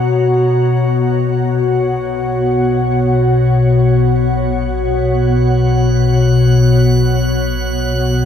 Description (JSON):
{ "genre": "ambient", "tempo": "free time", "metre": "none", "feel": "none", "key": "unclear", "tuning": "A4 = 440 Hz", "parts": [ { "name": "glassy FM pad", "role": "sustained chords", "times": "0.0-8.3 s", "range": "B2 to A#5", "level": "-12 LUFS", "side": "left 2 dB", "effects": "ensemble chorus, built-in reverb" }, { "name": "deep rumbling drone", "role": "bass", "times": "2.0-8.3 s", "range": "B1", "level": "-24 LUFS", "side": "equal", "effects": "built-in reverb" }, { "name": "drifting glass-harmonics texture", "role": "texture", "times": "5.2-8.3 s", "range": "F#6", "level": "-26 LUFS", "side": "right 4 dB", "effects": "chorus, built-in reverb" } ], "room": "moderate plate reverb, RT60 2.5 s", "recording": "dreamy mix soaked in reverb", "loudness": "-12 LUFS", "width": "side -8 dB against mid", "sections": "0.0-8.3 A section", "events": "fade-in on synth drone 0.0-8.3", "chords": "0.0 Bsus2" }